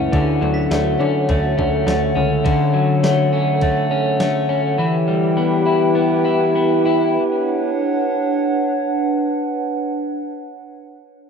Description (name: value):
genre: dream pop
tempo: 102 BPM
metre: 4/4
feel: uneven beats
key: B minor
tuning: A4 = 439 Hz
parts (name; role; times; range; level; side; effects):
- warbly tape-like pad; sustained chords; 0.0-9.7 s; D3 to G5; -18 LUFS; right 1 dB; chorus, built-in reverb
- electric guitar at the edge of break-up; arpeggios; 0.0-7.7 s; F#2 to E4; -19 LUFS; left 3 dB; wide subtle chorus, tape echo
- plucky analog bass; bass; 0.0-2.4 s; C#2 to D3; -22 LUFS; equal; none
- clean 12-bit digital drum machine; drums; 0.1-4.3 s; kick drum, ride cymbal, snare drum, tambourine; -22 LUFS; equal; none
- glockenspiel with soft plastic mallets; texture; 0.5-2.4 s; B6; -40 LUFS; right 4 dB; tape echo
room: light reverb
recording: rough home demo mix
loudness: -16 LUFS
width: side -6 dB against mid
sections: 0.0-9.7 A section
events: slowing down 4.8-9.7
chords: 0.1 Dmaj7; 4.8 Em; 7.2 Bmadd9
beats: | 0.13 0.71 1.29 1.88 | 2.46 3.04 3.62 4.21 | 4.79 5.38 5.96 6.56 | 7.17 7.79 8.42 9.07